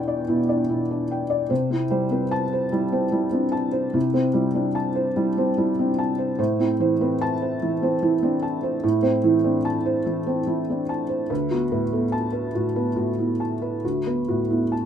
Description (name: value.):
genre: neoclassical minimalist piano.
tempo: 98 BPM.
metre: 4/4.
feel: rubato.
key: unclear.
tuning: A4 = 438 Hz.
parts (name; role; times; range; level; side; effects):
felt-muted upright piano; solo; 0.0-14.9 s; D2 to A5; -20 LUFS; equal; none.
room: light reverb.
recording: minimal, uncompressed stereo recording.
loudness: -21 LUFS.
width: side -8 dB against mid.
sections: 0.0-14.9 A section.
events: none.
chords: 0.0 Em7; 1.5 C6; 6.4 Am; 11.3 D6.